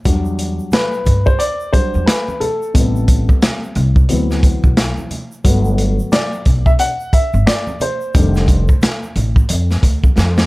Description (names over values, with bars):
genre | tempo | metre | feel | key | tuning
hip hop, jazz-hop | 89 BPM | 4/4 | swing 60% on 16ths | E minor | A4 = 441 Hz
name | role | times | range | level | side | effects
dark upright piano | accompaniment | 0.1-8.8 s | C3 to F#5 | -19 LUFS | left 1 dB | plate reverb
upright bass | bass | 0.1-10.5 s | F1 to G2 | -16 LUFS | equal | none
crunchy breakbeat drum kit | drums | 0.1-10.5 s | hi-hat, kick drum, snare drum | -14 LUFS | equal | none
egg shaker and congas | percussion | 0.1-10.5 s | none | -31 LUFS | right 2 dB | none
room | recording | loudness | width
little or no reverb | none | -12 LUFS | side -20 dB against mid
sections
0.1-10.5 A section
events
upright piano solo 0.1-10.5; drum fill 10.2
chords
0.1 Em9; 2.8 Am7; 4.1 D13; 5.4 Gmaj7; 8.1 F13